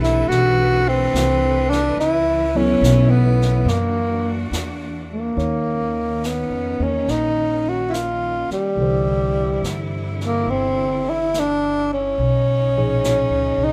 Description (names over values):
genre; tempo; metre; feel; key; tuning
jazz ballad; 71 BPM; 4/4; swing 68% on 8ths; unclear; A4 = 440 Hz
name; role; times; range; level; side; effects
breathy tenor saxophone; melody; 0.0-13.7 s; G3 to F#4; -22 LUFS; equal; none
tine electric piano; accompaniment; 0.0-13.7 s; A#2 to C#5; -28 LUFS; equal; overdrive
clear studio cello section; sustained chords; 0.0-13.7 s; C3 to B4; -33 LUFS; equal; none
upright bass; bass; 0.0-13.7 s; G1 to G2; -25 LUFS; equal; none
jazz brush drum kit; drums; 0.0-13.7 s; brushed snare drum, hi-hat, snare drum; -33 LUFS; equal; none
room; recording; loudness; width
light reverb; none; -19 LUFS; mono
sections
0.0-5.4 A section; 5.4-13.7 B section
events
none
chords
0.0 Cmaj7; 2.0 B9sus4; 3.7 F#7b13; 5.4 Eb5; 8.8 Cadd9; 12.2 Bmaj9